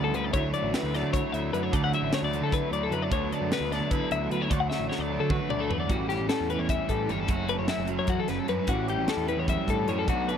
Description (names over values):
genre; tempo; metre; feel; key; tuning
math rock and midwest emo; 302 BPM (eighths); 7/8; straight; D major; A4 = 436 Hz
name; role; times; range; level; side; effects
clean electric guitar; accompaniment; 0.0-10.4 s; D2 to G4; -32 LUFS; right 9 dB; ensemble chorus
twelve-string electric guitar; arpeggios; 0.0-10.4 s; F#4 to F#5; -30 LUFS; left 9 dB; spring reverb
cranked stack guitar; riff; 0.0-10.4 s; A2 to G4; -33 LUFS; equal; overdrive
growling picked electric bass; bass; 0.0-10.4 s; F#1 to D3; -32 LUFS; equal; overdrive
crisp fusion drum kit; drums; 0.1-10.4 s; hi-hat, kick drum, snare drum, toms; -31 LUFS; equal; none
room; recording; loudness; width
little or no reverb; dry, close 1970s-style studio recording; -25 LUFS; side -8 dB against mid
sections
0.0-5.9 A section; 5.9-10.4 B section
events
drum fill 4.7-5.9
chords
0.3 Dmaj9; 3.1 Bm9/D; 4.5 D6; 5.9 A13; 7.3 F#m7; 8.7 A13